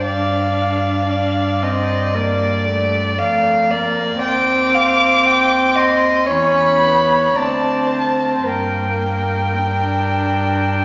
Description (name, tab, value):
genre	classical, slow romantic movement for string quartet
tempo	50-59 BPM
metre	4/4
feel	rubato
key	unclear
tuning	A4 = 438 Hz
part	dark violin	melody	0.0-10.8 s	D5 to D6	-21 LUFS	equal	none
part	warm violin	second line	0.0-10.8 s	Bb4 to G5	-21 LUFS	equal	none
part	warm viola	accompaniment	0.0-10.8 s	A3 to D4	-24 LUFS	equal	none
part	clear cello	bass	0.0-10.8 s	D2 to G2	-25 LUFS	equal	none
room	wet recital hall reverb, RT60 1.5 s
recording	nothing above 7.5 kHz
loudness	-17 LUFS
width	mono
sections	0.0-10.8 A section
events	none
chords	0.0 Dm/G; 4.2 Cm/Eb; 6.3 C#m7/E; 7.4 D5; 8.5 Gm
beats	| 0.05 1.11 2.15 3.18 | 4.22 5.26 6.29 7.37 | 8.48 9.66 10.82